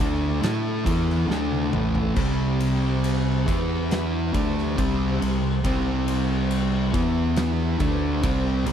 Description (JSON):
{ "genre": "stoner and doom metal", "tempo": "69 BPM", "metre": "4/4", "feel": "straight", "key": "unclear", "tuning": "A4 = 440 Hz", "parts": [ { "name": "phased string machine", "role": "sustained chords", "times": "0.0-8.7 s", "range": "E4 to C6", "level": "-37 LUFS", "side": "equal", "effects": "ensemble chorus, phaser" }, { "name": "thick fuzz guitar", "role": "riff", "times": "0.0-8.7 s", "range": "A2 to A4", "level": "-26 LUFS", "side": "left 9 dB", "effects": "distortion" }, { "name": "thick fuzz guitar", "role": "riff", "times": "0.0-8.7 s", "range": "A2 to A4", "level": "-26 LUFS", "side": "right 9 dB", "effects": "distortion" }, { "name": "overdriven fingered electric bass", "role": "bass", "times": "0.0-8.7 s", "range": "A1 to A2", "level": "-27 LUFS", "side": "equal", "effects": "none" }, { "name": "oversized low-tuned drum kit", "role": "drums", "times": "0.0-8.7 s", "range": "crash cymbal, kick drum, ride cymbal, snare drum, toms", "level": "-28 LUFS", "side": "equal", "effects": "none" } ], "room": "little or no reverb", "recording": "none", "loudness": "-21 LUFS", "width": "side -9 dB against mid", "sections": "0.0-8.7 A section", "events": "drum fill 1.3-2.2", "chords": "0.0 A5; 2.2 C5; 3.5 E5; 4.3 C5; 6.9 E5; 7.8 C5" }